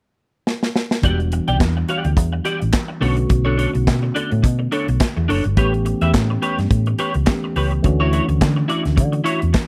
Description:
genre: disco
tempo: 106 BPM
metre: 4/4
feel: swing 56% on 16ths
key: E dorian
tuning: A4 = 440 Hz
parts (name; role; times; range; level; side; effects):
- modern studio drum kit; drums; 0.5-9.7 s; handclaps, hi-hat, kick drum, snare drum; -21 LUFS; equal; none
- electric guitar at the edge of break-up; accompaniment; 1.0-9.6 s; D4 to G5; -25 LUFS; equal; ensemble chorus
- tine electric piano; accompaniment; 1.0-9.7 s; D3 to G4; -26 LUFS; equal; phaser
- hollow-body short-scale fingered electric bass; bass; 1.0-9.5 s; E1 to D3; -21 LUFS; equal; none
room: studio reverb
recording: dry, close 1970s-style studio recording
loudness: -19 LUFS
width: mono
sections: 0.0-1.0 A section; 1.0-9.7 B section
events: drum fill 0.5-1.0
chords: 0.0 N.C.; 1.0 Em9; 3.0 Bm9; 5.6 A9; 7.8 Dmaj9

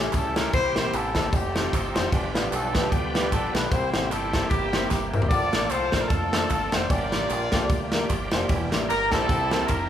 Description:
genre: uptempo gospel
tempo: 151 BPM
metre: 4/4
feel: swing 56% on 8ths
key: unclear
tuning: A4 = 439 Hz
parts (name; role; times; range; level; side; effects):
- warm horn section; melody; 0.0-9.9 s; Bb3 to D5; -27 LUFS; left 1 dB; none
- warm upright piano; accompaniment; 0.0-9.9 s; G2 to C5; -31 LUFS; left 1 dB; none
- bright tonewheel organ; sustained chords; 0.0-9.9 s; Eb3 to A4; -32 LUFS; right 1 dB; chorus vibrato, slow rotary speaker
- fingered electric bass with an envelope filter; bass; 0.0-9.9 s; E1 to F2; -32 LUFS; equal; none
- natural country drum kit; drums; 0.1-9.8 s; kick drum, ride cymbal, snare drum, toms; -25 LUFS; equal; none
- handclaps and tambourine; percussion; 0.1-9.8 s; none; -40 LUFS; right 2 dB; none
room: moderate large studio reverb, RT60 0.9 s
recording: band playing live in one room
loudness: -22 LUFS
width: side -10 dB against mid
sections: 0.0-9.9 A section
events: drum fill 4.9-5.3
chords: 0.0 A7; 0.5 C7; 1.3 F9; 2.1 G7; 3.7 C7; 5.3 Bbmaj7; 8.5 Em7b5; 9.3 C7

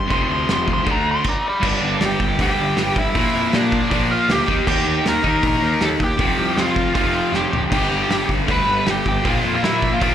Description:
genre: punk rock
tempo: 158 BPM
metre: 4/4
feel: straight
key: unclear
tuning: A4 = 440 Hz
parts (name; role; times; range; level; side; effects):
- bluesy overdriven lead guitar; melody; 0.0-10.1 s; D4 to C6; -22 LUFS; equal; distortion, slapback echo
- fuzz picked electric bass; bass; 0.0-10.1 s; F1 to Bb2; -25 LUFS; equal; overdrive
- distorted electric guitar; riff; 0.1-10.1 s; F2 to Eb4; -20 LUFS; left 1 dB; distortion, slapback echo
- loose indie drum kit; drums; 0.1-10.1 s; crash cymbal, hi-hat, kick drum, snare drum, toms; -22 LUFS; equal; none
room: small room ambience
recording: live gig heard through the venue's PA, club reverb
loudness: -16 LUFS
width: side -10 dB against mid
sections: 0.0-1.6 A section; 1.6-10.1 B section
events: lead electric guitar solo 0.0-1.6; stop 1.3-1.6; drum fill 7.3-7.7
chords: 0.1 F5; 0.9 D5; 1.6 G5; 3.2 Bb; 4.5 Eb; 6.2 F5; 7.7 G; 9.2 Bb5

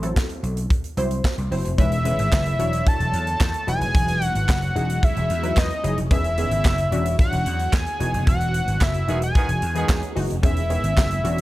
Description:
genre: early-eighties boogie funk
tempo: 111 BPM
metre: 4/4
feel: straight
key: unclear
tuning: A4 = 440 Hz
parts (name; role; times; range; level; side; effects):
- funky polysynth comp; accompaniment; 0.0-11.4 s; D#3 to C#5; -29 LUFS; left 2 dB; chorus
- vintage slap bass; bass; 0.0-11.4 s; E1 to E2; -24 LUFS; equal; tube saturation
- modern studio drum kit; drums; 0.0-11.4 s; handclaps, hi-hat, kick drum, snare drum; -22 LUFS; equal; none
- fat analog lead; melody; 1.8-11.4 s; D#5 to A5; -25 LUFS; equal; slapback echo
- phased string machine; sustained chords; 1.8-11.4 s; C#3 to C#5; -36 LUFS; equal; ensemble chorus, phaser
- group handclap; percussion; 2.3-11.1 s; none; -32 LUFS; right 4 dB; none
- clear horn section; second line; 9.1-10.1 s; D#3 to G#4; -32 LUFS; right 3 dB; none
room: small room ambience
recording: none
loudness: -19 LUFS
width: side -17 dB against mid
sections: 0.0-1.8 A section; 1.8-11.4 B section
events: band accent 8.3-10.4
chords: 0.0 Am6; 1.8 Emaj13; 2.6 Dmaj9/E; 3.7 C#m11/E; 6.1 Emaj13; 6.9 Dmaj9/E; 8.0 C#m11/E; 10.4 Emaj13

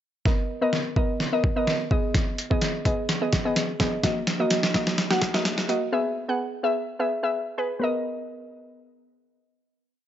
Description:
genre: dance-pop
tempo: 127 BPM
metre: 4/4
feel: straight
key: B major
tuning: A4 = 443 Hz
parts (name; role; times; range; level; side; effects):
- soft round pluck; accompaniment; 0.3-10.1 s; A#3 to F#5; -26 LUFS; equal; chorus, sidechain pumping
- dusty soul sampler-style drum kit; drums; 0.3-5.8 s; hi-hat, kick drum, snare drum; -24 LUFS; equal; overdrive
room: light reverb, digital ambience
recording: dry, gritty hardware recording, high-pass filter, nothing above 7.7 kHz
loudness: -22 LUFS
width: side -11 dB against mid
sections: 0.3-7.8 build; 7.8-10.1 final chord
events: build-up 0.3-7.8; drum fill 0.3-5.9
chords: 0.3 Bmaj7; 1.9 G#m/B; 4.0 D#m; 5.9 E; 7.8 Bmaj7

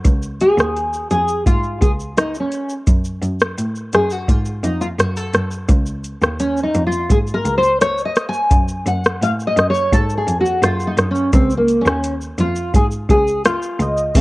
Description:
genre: indie pop, bedroom pop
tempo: 85 BPM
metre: 4/4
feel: straight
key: Db major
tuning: A4 = 440 Hz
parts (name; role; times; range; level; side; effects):
- rich cello; bass; 0.1-14.2 s; Db2 to A2; -22 LUFS; equal; none
- soft vintage rhythm box; drums; 0.1-14.2 s; crash cymbal, hi-hat, kick drum, rim click, shaker; -17 LUFS; equal; overdrive
- nylon-string guitar; accompaniment; 0.4-14.2 s; Db3 to Ab5; -18 LUFS; equal; analog chorus, warbly pitch drift
- warm velvety synth lead; melody; 13.8-14.2 s; Eb5 to F5; -20 LUFS; right 1 dB; lush chorus, slapback echo
room: light reverb, digital ambience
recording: worn, warbling old tape, cassette tape, warbly pitch drift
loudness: -15 LUFS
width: side -20 dB against mid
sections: 0.0-14.1 A section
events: nylon-string guitar solo 0.0-14.1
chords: 0.1 Db; 2.9 Gbmadd9; 5.7 Db; 8.5 Gbmadd9; 11.3 Db

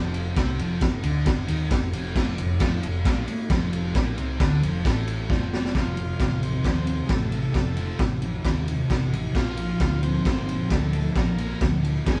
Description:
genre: garage rock duo or trio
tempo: 133 BPM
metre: 4/4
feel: straight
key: F mixolydian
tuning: A4 = 439 Hz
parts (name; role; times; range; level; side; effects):
- thick fuzz guitar; riff; 0.0-12.2 s; F2 to F4; -30 LUFS; equal; distortion
- hollow-body short-scale picked electric bass; bass; 0.0-12.2 s; F1 to F2; -30 LUFS; equal; tube saturation
- raw garage drum kit; drums; 0.1-12.2 s; crash cymbal, kick drum, ride cymbal, snare drum; -27 LUFS; equal; vintage 12-bit sampler grit
- overdriven combo organ; melody; 5.8-12.2 s; Ab3 to Ab4; -36 LUFS; equal; none
room: wet studio reverb, RT60 0.6 s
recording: band playing live in one room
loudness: -24 LUFS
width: mono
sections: 0.0-5.8 A section; 5.8-12.2 B section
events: drum fill 5.3-5.8; transistor combo organ solo 5.8-12.2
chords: 0.0 F; 9.4 Bb

